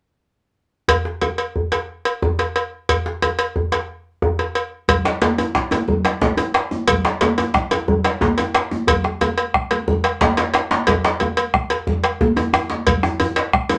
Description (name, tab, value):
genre	west african traditional, West African drum ensemble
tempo	120 BPM (dotted quarters)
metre	12/8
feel	straight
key	none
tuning	none
part	cowbell	percussion	0.9-13.8 s	none	-22 LUFS	equal	none
part	djembe	percussion	0.9-13.8 s	none	-24 LUFS	equal	none
part	bombo	percussion	4.9-13.8 s	none	-23 LUFS	equal	none
part	congas	percussion	4.9-13.8 s	none	-28 LUFS	equal	none
part	djembe	percussion	5.1-13.8 s	none	-24 LUFS	equal	none
room	moderate studio ambience, RT60 0.4 s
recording	none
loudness	-19 LUFS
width	mono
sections	0.9-4.9 A section; 4.9-13.8 B section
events	drum fill 12.4-12.9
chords	none